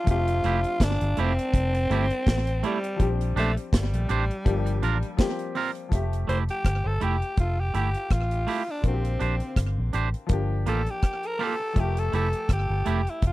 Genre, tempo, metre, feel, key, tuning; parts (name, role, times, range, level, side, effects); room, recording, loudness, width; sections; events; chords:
lovers rock reggae; 82 BPM; 4/4; swing 55% on 16ths; F major; A4 = 440 Hz
raspy alto saxophone; melody; 0.0-13.3 s; G3 to C5; -29 LUFS; equal; tape echo
clear grand piano; accompaniment; 0.0-13.3 s; D3 to E5; -34 LUFS; left 5 dB; slapback echo
vintage muted fingered electric bass; bass; 0.1-13.3 s; F1 to Bb1; -26 LUFS; equal
deep reggae drum kit; drums; 0.1-13.3 s; hi-hat, kick drum, rim click, snare drum; -23 LUFS; equal; slapback echo
twangy electric guitar; stabs; 0.4-13.0 s; A3 to C5; -27 LUFS; right 7 dB
little or no reverb; dry, close 1970s-style studio recording; -23 LUFS; side -17 dB against mid
0.0-5.9 A section; 5.9-13.3 B section
alto saxophone solo 5.9-13.3
0.1 Fmaj9; 3.0 Bb69; 4.5 Gm7; 5.2 C7sus4; 5.9 Fmaj9; 8.8 Bb69; 10.3 Gm7; 11.8 Fmaj9